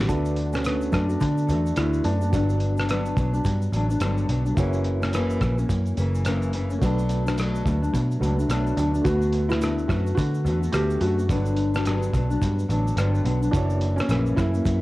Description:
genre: indie pop, bedroom pop.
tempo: 107 BPM.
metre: 4/4.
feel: swing 60% on 16ths.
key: D major.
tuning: A4 = 442 Hz.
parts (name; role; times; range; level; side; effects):
bright reed electric piano; accompaniment; 0.0-14.8 s; G3 to D5; -35 LUFS; right 4 dB; fast tremolo, cassette tape, plate reverb.
nylon-string guitar; accompaniment; 0.0-14.8 s; F#2 to F#4; -27 LUFS; left 2 dB; wide subtle chorus, warbly pitch drift, cassette tape.
vintage muted picked electric bass; bass; 0.0-14.8 s; F#1 to D3; -24 LUFS; equal; none.
felt-muted upright piano; melody; 0.1-2.6, 8.8-14.8 s; B3 to G4; -28 LUFS; right 1 dB; wide subtle chorus, cassette tape.
cloth-damped thuddy drum kit; drums; 0.1-14.8 s; hi-hat, kick drum, rim click, shaker; -29 LUFS; equal; cassette tape.
tube shaker; percussion; 0.1-14.8 s; none; -52 LUFS; right 7 dB; none.
room: light reverb.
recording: home recording on cassette.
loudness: -21 LUFS.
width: side -18 dB against mid.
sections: 0.1-14.8 A section.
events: none.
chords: 0.1 D6; 2.3 Gmaj7; 4.6 F#7; 6.8 Bm7; 9.1 D6; 11.3 Gmaj7; 13.5 F#7.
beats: | 0.09 0.65 1.21 1.77 | 2.33 2.89 3.45 4.01 | 4.57 5.13 5.69 6.25 | 6.81 7.37 7.93 8.49 | 9.05 9.61 10.17 10.73 | 11.29 11.85 12.41 12.97 | 13.53 14.09 14.65.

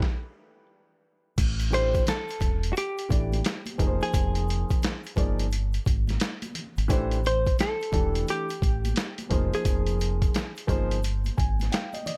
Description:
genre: hip hop, jazz-hop.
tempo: 87 BPM.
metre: 4/4.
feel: swing 64% on 16ths.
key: unclear.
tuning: A4 = 439 Hz.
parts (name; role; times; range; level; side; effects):
hollow-body jazz guitar; melody; 0.0-10.9 s; F#4 to C5; -33 LUFS; equal; none.
boom bap sampler-style drum kit; drums; 0.0-12.2 s; crash cymbal, hi-hat, kick drum, snare drum; -30 LUFS; equal; none.
deep dub fingered electric bass; bass; 1.4-11.7 s; E1 to A1; -30 LUFS; equal; none.
egg shaker and congas; percussion; 1.4-12.2 s; none; -45 LUFS; equal; none.
dark upright piano; accompaniment; 1.7-12.2 s; E3 to Ab5; -34 LUFS; equal; none.
room: little or no reverb.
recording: none.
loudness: -26 LUFS.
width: mono.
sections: 0.0-1.4 A section; 1.4-12.2 B section.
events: stop 0.0-1.4; upright piano fill 11.0-12.2.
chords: 0.0 N.C.; 1.4 A7(no3); 3.8 Fm11; 6.9 A7(no3); 9.3 Fm11.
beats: 0.00 0.69 | 1.38 2.07 2.76 3.45 | 4.14 4.83 5.51 6.21 | 6.89 7.58 8.27 8.96 | 9.65 10.34 11.03 11.72.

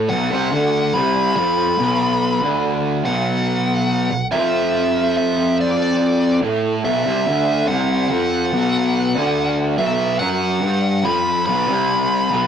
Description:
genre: metal.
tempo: 71 BPM.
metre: 4/4.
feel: straight.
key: unclear.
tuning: A4 = 439 Hz.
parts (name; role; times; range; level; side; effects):
fuzz guitar; riff; 0.0-12.5 s; B1 to A3; -18 LUFS; equal; distortion.
fuzz lead guitar; melody; 0.1-12.5 s; D5 to B5; -20 LUFS; equal; wah, distortion.
room: moderate studio reverb, RT60 0.6 s.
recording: rough rehearsal-room recording, tube saturation.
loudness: -16 LUFS.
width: side -8 dB against mid.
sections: 0.0-12.5 A section.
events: none.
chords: 0.0 Bm.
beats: | 0.10 0.94 1.78 2.62 | 3.46 4.30 5.15 5.99 | 6.83 7.67 8.52 9.36 | 10.20 11.04 11.89.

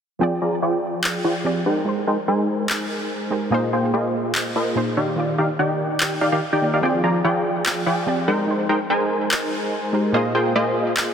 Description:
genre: future bass.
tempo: 145 BPM.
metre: 4/4.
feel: swing 54% on 16ths, half-time.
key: F dorian.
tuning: A4 = 440 Hz.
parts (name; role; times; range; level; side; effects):
soft round pluck; accompaniment; 0.2-11.1 s; Bb2 to G5; -26 LUFS; right 1 dB; chorus, digital delay.
supersaw stab; riff; 0.2-11.1 s; Eb3 to Bb5; -20 LUFS; equal; low-pass filter, digital delay.
electronic handclaps; drums; 1.0-11.1 s; none; -26 LUFS; equal; none.
room: moderate huge ambient reverb, RT60 4.0 s.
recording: dense, heavily limited modern master.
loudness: -19 LUFS.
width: side -7 dB against mid.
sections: 0.2-11.1 A section.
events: filter sweep on supersaw synth 0.2-11.1.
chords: 0.2 Fm69; 1.9 Abmaj9; 3.5 Bb7sus4; 5.2 Ebmaj7; 6.8 Fm69; 8.5 Abmaj9; 10.1 Bb7sus4.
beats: | 0.21 0.63 1.04 1.45 | 1.87 2.28 2.69 3.11 | 3.52 3.94 4.35 4.76 | 5.18 5.59 6.00 6.42 | 6.83 7.25 7.66 8.07 | 8.49 8.90 9.31 9.73 | 10.14 10.56 10.97.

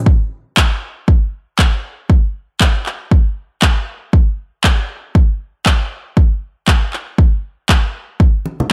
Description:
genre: house.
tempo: 118 BPM.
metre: 4/4.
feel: swing 58% on 16ths.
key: none.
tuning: none.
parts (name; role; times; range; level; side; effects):
electronic kick drum; drums; 0.1-8.3 s; none; -14 LUFS; equal; overdrive.
electronic handclaps; drums; 0.6-7.8 s; none; -20 LUFS; equal; overdrive.
congas; percussion; 8.5-8.7 s; none; -22 LUFS; equal; none.
room: little or no reverb.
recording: none.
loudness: -16 LUFS.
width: mono.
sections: 0.1-8.7 A section.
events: none.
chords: none.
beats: | 0.07 0.57 1.08 1.59 | 2.10 2.61 3.12 3.62 | 4.13 4.64 5.15 5.66 | 6.17 6.68 7.18 7.69 | 8.20.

